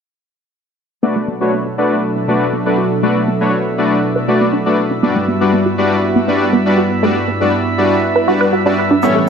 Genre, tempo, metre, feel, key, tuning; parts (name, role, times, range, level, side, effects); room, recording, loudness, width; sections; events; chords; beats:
progressive house; 120 BPM; 4/4; straight; B minor; A4 = 440 Hz
warm analog pad; sustained chords; 1.0-9.3 s; G2 to A4; -19 LUFS; right 1 dB; chorus
wide unison pluck; arpeggios; 1.0-9.2 s; A3 to B4; -18 LUFS; right 2 dB; vintage 12-bit sampler grit, digital delay
soft supersaw; stabs; 1.0-9.1 s; G3 to D5; -15 LUFS; left 1 dB; cassette tape, low-pass filter, digital delay
drifting glass-harmonics texture; texture; 1.8-9.3 s; E4 to E5; -23 LUFS; right 2 dB; chorus, built-in reverb
egg shaker; percussion; 9.0-9.1 s; -35 LUFS; right 2 dB
moderate lush hall reverb, RT60 1.7 s; -12 LUFS; side -6 dB against mid
1.0-9.3 A section
filter sweep on synth pluck 1.0-9.3; filter sweep on supersaw synth 1.0-9.3
1.0 Bm7; 5.0 Gmaj7
| 1.03 1.53 2.03 2.53 | 3.03 3.53 4.03 4.53 | 5.03 5.53 6.03 6.53 | 7.03 7.53 8.03 8.53 | 9.03